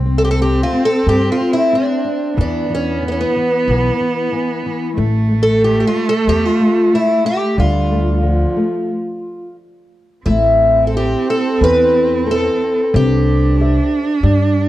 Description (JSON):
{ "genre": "fado-style ballad", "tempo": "92 BPM", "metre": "4/4", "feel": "rubato", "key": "D minor, A minor from 10.3 s", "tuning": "A4 = 440 Hz", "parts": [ { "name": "rich cello", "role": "second line", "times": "0.0-14.7 s", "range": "F3 to D4", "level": "-20 LUFS", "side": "right 3 dB", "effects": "none" }, { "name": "flamenco guitar", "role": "accompaniment", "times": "0.0-14.7 s", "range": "D3 to E5", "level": "-22 LUFS", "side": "left 4 dB", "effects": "none" }, { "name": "upright bass", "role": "bass", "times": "0.0-14.7 s", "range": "A1 to G2", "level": "-16 LUFS", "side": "equal", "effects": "none" }, { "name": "picked twelve-string acoustic guitar", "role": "melody", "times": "0.2-13.9 s", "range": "B3 to B4", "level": "-16 LUFS", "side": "equal", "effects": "none" } ], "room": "small room reverb", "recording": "dry, close 1970s-style studio recording", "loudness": "-13 LUFS", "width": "side -14 dB against mid", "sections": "0.0-10.3 A section; 10.3-14.7 B section", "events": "stop 8.9-10.3", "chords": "0.0 C5; 2.4 E5; 5.0 A5; 7.6 Dm; 10.3 Am; 12.9 C" }